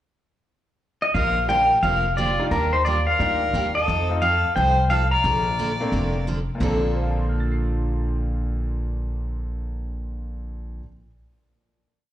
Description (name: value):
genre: country, western swing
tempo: 176 BPM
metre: 4/4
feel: swing 64% on 8ths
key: Bb major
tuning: A4 = 440 Hz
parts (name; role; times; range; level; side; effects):
- pedal steel guitar; melody; 1.0-6.2 s; Bb4 to Bb5; -21 LUFS; left 1 dB; slapback echo
- upright bass; bass; 1.1-10.8 s; F1 to F2; -24 LUFS; equal; none
- clear fiddle; second line; 1.2-6.2 s; D4 to D5; -32 LUFS; right 1 dB; slapback echo
- picked steel-string acoustic guitar; accompaniment; 1.2-10.8 s; Bb2 to A4; -30 LUFS; right 2 dB; slapback echo
- bright upright piano; accompaniment; 1.5-11.1 s; Bb2 to C7; -31 LUFS; left 2 dB; slapback echo
room: light reverb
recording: live gig heard through the venue's PA, club reverb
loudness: -20 LUFS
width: side -12 dB against mid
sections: 0.0-1.2 pickup bar; 1.2-6.6 A section; 6.6-9.3 final chord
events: none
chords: 0.0 N.C.; 1.2 Bb6; 2.5 Ebmaj9; 3.9 F7; 5.2 Bbmaj9